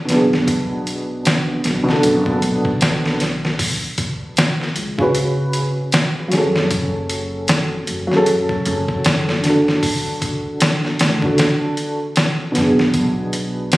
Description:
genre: trip hop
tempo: 77 BPM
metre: 4/4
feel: swing 59% on 16ths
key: F# minor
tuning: A4 = 440 Hz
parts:
  - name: felt-muted upright piano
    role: accompaniment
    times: 0.1-13.8 s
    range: B2 to B4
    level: -18 LUFS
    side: equal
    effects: tremolo, tape echo
  - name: upright bass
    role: bass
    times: 0.1-13.8 s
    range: F#1 to F#2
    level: -24 LUFS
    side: equal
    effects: none
  - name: trip hop sampler-style drum kit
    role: drums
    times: 0.1-13.8 s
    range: hi-hat, kick drum, snare drum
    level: -18 LUFS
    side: equal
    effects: none
room: light reverb, small room ambience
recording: recorded on a phone in the room, studio reverb, compression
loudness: -16 LUFS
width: side -18 dB against mid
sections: 0.0-13.8 A section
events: none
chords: 0.5 Bm7; 3.6 C#7sus4; 6.7 F#madd9; 9.8 D; 12.9 Bm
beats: | 0.48 1.25 2.03 2.81 | 3.59 4.37 5.15 5.93 | 6.71 7.49 8.27 9.05 | 9.83 10.61 11.38 12.16 | 12.94 13.72

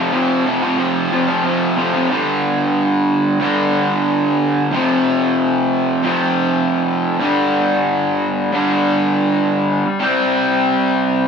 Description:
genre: punk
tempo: 182 BPM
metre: 4/4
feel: straight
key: unclear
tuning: A4 = 438 Hz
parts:
  - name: raw garage guitar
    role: solo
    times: 0.0-11.3 s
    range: F2 to C4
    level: -14 LUFS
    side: equal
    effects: overdrive
room: moderate studio reverb, RT60 0.8 s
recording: band playing live in one room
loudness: -14 LUFS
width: side -6 dB against mid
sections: 0.0-2.1 A section; 2.1-11.3 B section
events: half time 0.0-2.1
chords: 0.0 F5; 2.1 G5; 4.7 F5; 7.2 G5; 10.0 C5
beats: 0.12 0.45 | 0.78 1.11 1.44 1.77 | 2.10 2.42 2.75 3.08 | 3.41 3.74 4.07 4.40 | 4.73 5.06 5.39 5.72 | 6.05 6.38 6.71 7.04 | 7.37 7.70 8.03 8.36 | 8.69 9.02 9.35 9.68 | 10.01 10.34 10.67 11.00

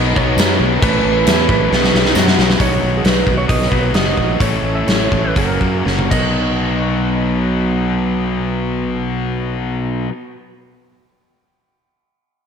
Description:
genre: classic rock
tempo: 115-136 BPM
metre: 4/4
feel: straight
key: B major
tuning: A4 = 440 Hz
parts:
  - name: clean lap steel guitar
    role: melody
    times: 0.0-10.1 s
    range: D#4 to E5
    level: -22 LUFS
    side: right 3 dB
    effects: slapback echo
  - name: mellow tonewheel organ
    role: sustained chords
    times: 0.0-2.6 s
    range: none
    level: barely audible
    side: none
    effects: none
  - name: overdriven electric guitar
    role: riff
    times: 0.0-10.1 s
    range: A2 to B4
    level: -23 LUFS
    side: right 9 dB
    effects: none
  - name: tight distorted guitar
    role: riff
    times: 0.0-10.1 s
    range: F#2 to A4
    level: -22 LUFS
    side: left 10 dB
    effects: distortion, slapback echo
  - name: tight distorted guitar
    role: riff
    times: 0.0-2.6 s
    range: A2 to E4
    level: -24 LUFS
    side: right 1 dB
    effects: distortion, slapback echo
  - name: fuzz fingered electric bass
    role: bass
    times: 0.0-10.1 s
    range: F#1 to F#2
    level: -19 LUFS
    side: equal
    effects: overdrive
  - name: big rock drum kit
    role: drums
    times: 0.2-6.2 s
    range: crash cymbal, hi-hat, kick drum, snare drum, toms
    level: -17 LUFS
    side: equal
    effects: none
  - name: tambourine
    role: percussion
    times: 0.4-2.3 s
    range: none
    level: -33 LUFS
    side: right 5 dB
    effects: none
room: moderate lush hall reverb, RT60 1.9 s, small room ambience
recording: big arena sound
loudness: -13 LUFS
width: side -7 dB against mid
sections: 0.0-2.6 A section; 2.6-6.4 B section; 6.4-10.6 C section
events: drum fill 1.7-2.6, 5.9-6.4; slowing down 2.6-6.4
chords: 0.0 B; 0.8 A; 1.7 B; 4.4 A; 5.4 F#; 6.1 B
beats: 0.38 | 0.82 1.26 1.70 2.15 | 2.59 3.03 3.48 3.94 | 4.40 4.87 5.36 5.86 | 6.37 6.89 7.42 7.94 | 8.46 8.99 9.51 10.03

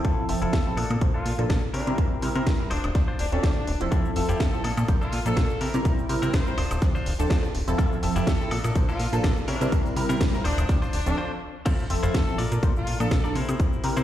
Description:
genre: filtered disco house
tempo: 124 BPM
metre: 4/4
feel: swing 55% on 16ths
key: D minor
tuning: A4 = 444 Hz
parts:
  - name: funky polysynth comp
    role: accompaniment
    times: 0.0-14.0 s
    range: F3 to E5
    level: -29 LUFS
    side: right 1 dB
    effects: chorus, phaser, sidechain pumping, low-pass filter
  - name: direct-recorded clean electric guitar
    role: riff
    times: 0.0-14.0 s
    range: Bb3 to A5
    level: -34 LUFS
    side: left 3 dB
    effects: sidechain pumping, low-pass filter
  - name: plucky analog bass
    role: bass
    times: 0.0-14.0 s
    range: D1 to C3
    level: -27 LUFS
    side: equal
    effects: tube saturation, sidechain pumping, low-pass filter
  - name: electronic kick drum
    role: drums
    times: 0.0-13.7 s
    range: none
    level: -24 LUFS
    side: equal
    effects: none
  - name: house drum kit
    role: drums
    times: 0.0-14.0 s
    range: crash cymbal, hi-hat, shaker, snare drum, woodblock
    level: -34 LUFS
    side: equal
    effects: sidechain pumping on perc, sidechain pumping on hats, sidechain pumping on cymbals
  - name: tambourine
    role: percussion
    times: 0.1-11.2 s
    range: none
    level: -48 LUFS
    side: right 8 dB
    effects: none
  - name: bright horn section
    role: melody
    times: 0.5-13.4 s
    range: D4 to C5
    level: -34 LUFS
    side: left 1 dB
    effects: sidechain pumping, low-pass filter, dub echo
room: light reverb, digital ambience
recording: played on a big sound system in a bare room, large studio reverb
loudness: -22 LUFS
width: side -12 dB against mid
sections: 0.0-11.7 A section; 11.7-14.0 B section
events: build-up 0.0-11.7; filter sweep 0.0-11.7; clean electric guitar fill 3.2-3.9; break 11.2-11.7; drop 11.7-14.0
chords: 0.0 Fmaj7; 0.8 Bbmaj7; 1.7 C7; 2.7 Dm7; 3.9 Fmaj7; 4.6 Bbmaj7; 5.6 C7; 6.6 Dm7; 7.8 Fmaj7; 8.5 Bbmaj7; 9.5 C7; 10.5 Dm7; 11.7 Fmaj7; 12.4 Bbmaj7; 13.4 C7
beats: | 0.05 0.53 1.01 1.50 | 1.98 2.47 2.95 3.43 | 3.92 4.40 4.89 5.37 | 5.85 6.34 6.82 7.30 | 7.79 8.27 8.76 9.24 | 9.72 10.21 10.69 11.18 | 11.66 12.14 12.63 13.11 | 13.60

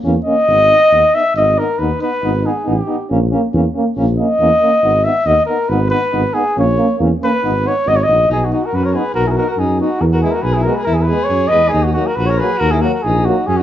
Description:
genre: balkan folk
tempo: 138 BPM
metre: 2/4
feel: swing 54% on 16ths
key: G# harmonic minor, B major from 8.3 s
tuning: A4 = 438 Hz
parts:
  - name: clear French horn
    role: accompaniment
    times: 0.0-13.3 s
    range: A#3 to D#4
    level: -23 LUFS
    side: left 2 dB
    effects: none
  - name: dark tuba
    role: bass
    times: 0.0-13.6 s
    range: G#1 to F#2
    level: -18 LUFS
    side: equal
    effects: none
  - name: clear euphonium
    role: accompaniment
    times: 0.1-13.4 s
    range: F#3 to B3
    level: -22 LUFS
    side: right 2 dB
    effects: none
  - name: dark trumpet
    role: melody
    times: 0.2-13.6 s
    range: F#4 to E5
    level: -14 LUFS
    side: equal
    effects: slapback echo, plate reverb
  - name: breathy alto saxophone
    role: second line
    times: 8.3-13.6 s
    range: C#4 to B4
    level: -22 LUFS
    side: left 2 dB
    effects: none
room: wet small room reverb, RT60 0.5 s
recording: heard from further back in the room, nothing above 7.5 kHz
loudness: -12 LUFS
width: side -11 dB against mid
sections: 0.0-8.3 A section; 8.3-13.6 B section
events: trumpet solo 0.0-8.3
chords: 0.5 G#m; 3.1 A#dim; 4.8 G#m; 6.6 A#dim; 7.4 G#m; 8.3 B; 10.0 E; 11.7 D#m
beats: 0.05 | 0.48 0.92 | 1.36 1.79 | 2.23 2.66 | 3.10 3.53 | 3.96 4.39 | 4.83 5.26 | 5.69 6.12 | 6.56 6.99 | 7.42 7.85 | 8.28 8.71 | 9.15 9.58 | 10.01 10.45 | 10.88 11.31 | 11.75 12.18 | 12.61 13.05 | 13.48

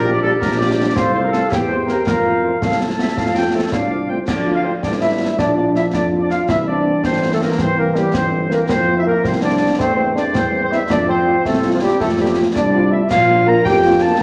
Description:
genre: military-style march for wind band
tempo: 109 BPM (dotted quarters)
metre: 6/8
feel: straight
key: F major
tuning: A4 = 440 Hz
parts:
  - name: mellow trumpet section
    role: melody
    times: 0.0-14.2 s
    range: F4 to Bb5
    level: -27 LUFS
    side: equal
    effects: none
  - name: warm woodwind section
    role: second line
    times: 0.0-14.2 s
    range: F4 to Bb5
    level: -24 LUFS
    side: equal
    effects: none
  - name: warm tuba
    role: bass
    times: 0.0-14.1 s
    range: G1 to Bb2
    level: -24 LUFS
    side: equal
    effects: none
  - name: mellow wooden piccolo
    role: second line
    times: 0.1-3.7 s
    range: G5 to D6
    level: -31 LUFS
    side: equal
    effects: none
  - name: dark French horn section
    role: accompaniment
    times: 0.1-14.1 s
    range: A3 to G4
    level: -26 LUFS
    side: equal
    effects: none
  - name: mellow trombone section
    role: sustained chords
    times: 0.2-14.2 s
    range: E3 to D4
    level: -27 LUFS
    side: equal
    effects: none
  - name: concert snare drum, concert bass drum and clash cymbals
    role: drums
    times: 0.4-14.2 s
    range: none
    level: -25 LUFS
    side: equal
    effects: none
  - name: clear euphonium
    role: second line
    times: 3.5-14.2 s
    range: F3 to Bb4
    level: -22 LUFS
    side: equal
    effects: none
room: wet large studio reverb, RT60 1.3 s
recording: none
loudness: -17 LUFS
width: mono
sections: 0.0-4.3 A section; 4.3-14.2 A section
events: none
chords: 0.0 Gm/Bb; 1.0 F/C; 1.5 C7/E; 2.1 F; 4.3 Dm; 5.4 Bb; 6.5 C7; 8.7 F; 9.8 C7/E; 10.9 F; 13.1 Bb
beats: 0.42 | 0.97 1.52 | 2.08 2.63 | 3.18 3.73 | 4.28 4.83 | 5.38 5.93 | 6.49 7.04 | 7.59 8.14 | 8.69 9.24 | 9.80 10.35 | 10.90 11.45 | 12.00 12.55 | 13.11 13.66 | 14.21

